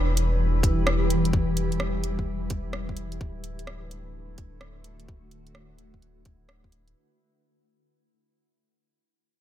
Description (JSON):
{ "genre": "future garage", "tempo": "128 BPM", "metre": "4/4", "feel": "swing 65% on 16ths", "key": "unclear", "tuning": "A4 = 440 Hz", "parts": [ { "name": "granular cloud pad", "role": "sustained chords", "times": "0.0-7.0 s", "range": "D3 to B4", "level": "-30 LUFS", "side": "left 1 dB", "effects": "built-in reverb, sidechain pumping" }, { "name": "warm sub bass", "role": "bass", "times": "0.0-6.9 s", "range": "D1 to E1", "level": "-28 LUFS", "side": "equal", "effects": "none" }, { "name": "drifting glass-harmonics texture", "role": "texture", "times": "0.0-7.0 s", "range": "E4", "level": "-40 LUFS", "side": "right 6 dB", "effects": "chorus, built-in reverb" }, { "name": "garage drum kit", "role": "drums", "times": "0.2-6.9 s", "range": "hi-hat, rim click", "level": "-31 LUFS", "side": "equal", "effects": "overdrive" }, { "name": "electronic kick drum", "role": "drums", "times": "0.6-6.7 s", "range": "none", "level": "-27 LUFS", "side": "equal", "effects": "overdrive" } ], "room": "light reverb, digital ambience", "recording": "none", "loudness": "-23 LUFS", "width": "side -12 dB against mid", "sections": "0.0-7.0 A section", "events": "fade-out 0.0-7.0", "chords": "0.0 Em; 3.2 D6" }